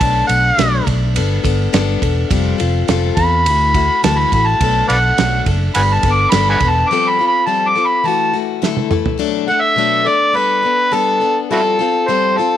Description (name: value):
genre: folk rock and heartland rock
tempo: 104 BPM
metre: 4/4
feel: straight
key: unclear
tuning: A4 = 439 Hz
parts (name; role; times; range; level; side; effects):
- overdriven harmonica; melody; 0.0-12.6 s; E4 to D6; -14 LUFS; right 1 dB; none
- picked plugged-in steel-string acoustic guitar; accompaniment; 0.0-12.6 s; A2 to A4; -20 LUFS; left 10 dB; none
- fingered electric bass; bass; 0.0-6.8 s; E1 to E2; -17 LUFS; right 1 dB; none
- damped 70s drum kit; drums; 0.0-9.2 s; kick drum, ride cymbal, snare drum, toms; -20 LUFS; right 4 dB; none
room: light reverb, small room ambience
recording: 1960s-style stereo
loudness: -12 LUFS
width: side -11 dB against mid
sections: 0.0-9.2 A section; 9.2-12.6 B section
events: harmonica solo 0.0-9.2; drum fill 8.6-9.2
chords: 0.0 Bm7; 1.2 Gadd9; 2.3 Fadd9; 3.5 Dadd9; 4.6 Bm7; 5.7 Gadd9; 6.9 Fadd9; 8.1 Esus24; 8.6 Asus4; 9.2 Bm7; 10.4 Gadd9; 11.5 Fadd9